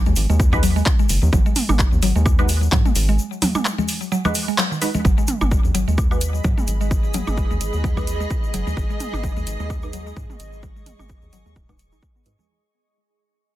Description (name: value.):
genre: minimal techno.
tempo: 129 BPM.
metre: 4/4.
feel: swing 56% on 16ths.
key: G# minor.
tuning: A4 = 441 Hz.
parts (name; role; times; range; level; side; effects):
mallet-like synth pluck; riff; 0.1-12.4 s; D#3 to D#4; -26 LUFS; equal; chorus, sidechain pumping, ping-pong delay.
rubbery square bass; bass; 0.1-12.4 s; F#1 to G#2; -21 LUFS; equal; sidechain pumping.
electronic congas, woodblock and toms; percussion; 0.1-12.5 s; none; -27 LUFS; right 2 dB; tape echo.
tube shaker; percussion; 0.1-12.5 s; none; -34 LUFS; left 4 dB; none.
booming analog drum machine; drums; 0.2-12.4 s; handclaps, hi-hat; -24 LUFS; right 1 dB; none.
electronic kick drum; drums; 0.4-12.1 s; none; -20 LUFS; equal; overdrive.
filtered dub chord stab; stabs; 0.5-12.3 s; G#3 to B4; -27 LUFS; right 2 dB; analog chorus, tape echo.
granular cloud pad; texture; 6.0-12.5 s; G#4 to C#6; -32 LUFS; right 2 dB; built-in reverb, sidechain pumping.
room: light reverb.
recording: dense, heavily limited modern master.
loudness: -17 LUFS.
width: side -14 dB against mid.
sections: 0.0-5.0 A section; 5.0-12.5 B section.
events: drop 0.0-5.0; break 3.2-5.0; band accent 4.6; fade-out 5.0-12.5; filter sweep on synth arpeggio sound 5.0-12.5.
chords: 0.0 G#7(no3); 5.0 G#m.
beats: 0.40 0.86 | 1.33 1.79 2.26 2.72 | 3.19 3.65 4.12 4.58 | 5.05 5.51 5.98 6.44 | 6.91 7.37 7.84 8.30 | 8.77 9.23 9.70 10.16 | 10.63 11.10 11.56 12.03.